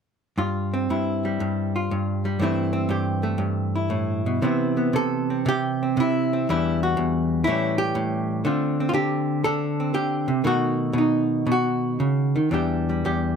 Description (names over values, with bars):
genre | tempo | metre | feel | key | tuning
solo jazz | 118 BPM | 4/4 | swing 68% on 8ths, rubato | C major | A4 = 440 Hz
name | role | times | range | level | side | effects
hollow-body jazz guitar | solo | 0.4-13.4 s | E2 to A4 | -21 LUFS | equal | none
room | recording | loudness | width
light reverb | none | -21 LUFS | side -6 dB against mid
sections
0.4-4.4 A section; 4.4-13.4 B section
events
none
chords
0.4 G7sus4; 2.4 C6/G; 4.4 Cmaj7; 6.5 Em7; 7.5 A7; 8.4 Dm7; 10.4 B7; 12.5 Em7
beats
| 0.37 0.88 1.40 1.90 | 2.40 2.90 3.39 3.91 | 4.43 4.95 5.46 5.97 | 6.48 6.97 7.46 7.95 | 8.45 8.94 9.44 9.95 | 10.45 10.96 11.47 12.00 | 12.53 13.05